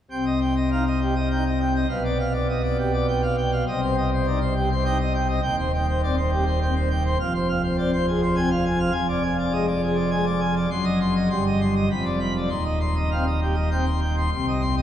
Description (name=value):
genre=classical, organ toccata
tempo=102 BPM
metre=3/4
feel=straight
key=C minor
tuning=A4 = 439 Hz
part: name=pipe organ, plenum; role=solo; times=0.1-14.8 s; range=Eb1 to C6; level=-20 LUFS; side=equal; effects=none
room=wet cathedral reverb, RT60 6.7 s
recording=in a vast, echoing space, studio reverb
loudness=-20 LUFS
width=side -10 dB against mid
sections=0.1-14.3 A section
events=none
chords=0.1 Cm; 1.9 G7/B; 3.7 Cm; 5.4 Cm/Eb; 7.2 Fm; 9.0 Ddim/F; 10.7 Cdim/Gb; 11.3 Cm/G; 11.9 Bdim/F; 12.5 Cm/Eb